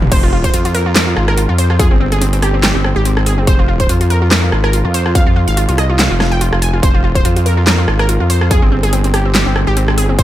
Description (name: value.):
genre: heavy wobble dubstep.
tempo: 143 BPM.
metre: 4/4.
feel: swing 55% on 16ths, half-time.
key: F minor.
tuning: A4 = 440 Hz.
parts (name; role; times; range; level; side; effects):
wobble bass; bass; 0.0-10.2 s; Eb1 to F2; -14 LUFS; equal; chorus, overdrive.
big-room dance drum kit; drums; 0.0-10.2 s; crash cymbal, handclaps, hi-hat, rim click, snare drum, toms; -17 LUFS; equal; none.
wide unison pluck; melody; 0.1-10.2 s; C4 to Ab5; -17 LUFS; equal; tape echo.
electronic kick drum; drums; 0.1-10.2 s; none; -13 LUFS; equal; none.
room: digital ambience.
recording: none.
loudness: -10 LUFS.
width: side -13 dB against mid.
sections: 0.0-10.2 A section.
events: none.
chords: 0.0 Fmadd9.